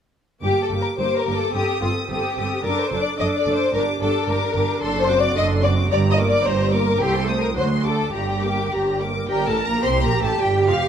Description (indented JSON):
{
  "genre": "quick classical-period movement for string orchestra",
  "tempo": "109 BPM",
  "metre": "2/4",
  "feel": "rubato",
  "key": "G minor",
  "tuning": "A4 = 440 Hz",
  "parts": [
    { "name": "rich studio violin section", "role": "melody", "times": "0.4-10.9 s", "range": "F5 to Eb6", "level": "-28 LUFS", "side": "left 2 dB", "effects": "none" },
    { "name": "warm symphonic violin section", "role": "second line", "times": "0.4-10.8 s", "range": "F4 to Eb5", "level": "-23 LUFS", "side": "left 3 dB", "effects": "none" },
    { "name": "dark symphonic viola section", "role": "accompaniment", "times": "0.4-10.9 s", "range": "F3 to C5", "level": "-25 LUFS", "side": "right 2 dB", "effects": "none" },
    { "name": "rich symphonic cello section", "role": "bass", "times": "0.4-10.9 s", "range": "C2 to Bb4", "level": "-25 LUFS", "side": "right 3 dB", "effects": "none" },
    { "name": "rich symphonic double bass section", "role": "bass", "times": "0.4-10.9 s", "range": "F1 to D2", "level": "-27 LUFS", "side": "right 3 dB", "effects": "none" }
  ],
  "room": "moderate recital hall reverb, RT60 1.5 s",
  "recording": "none",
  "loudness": "-18 LUFS",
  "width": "side -8 dB against mid",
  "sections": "0.4-9.3 A section; 9.3-10.9 A section",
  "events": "none",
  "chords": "0.4 Gm; 1.5 Am7b5/G; 2.6 D/F#; 3.7 Gm; 4.8 D7/F#; 5.9 Gm; 7.0 Adim/C; 7.6 D7; 8.1 Gm",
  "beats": "| 0.44 0.99 | 1.55 2.10 | 2.65 3.19 | 3.73 4.28 | 4.82 5.36 | 5.91 6.46 | 7.01 7.57 | 8.14 8.72 | 9.29 9.85 | 10.40"
}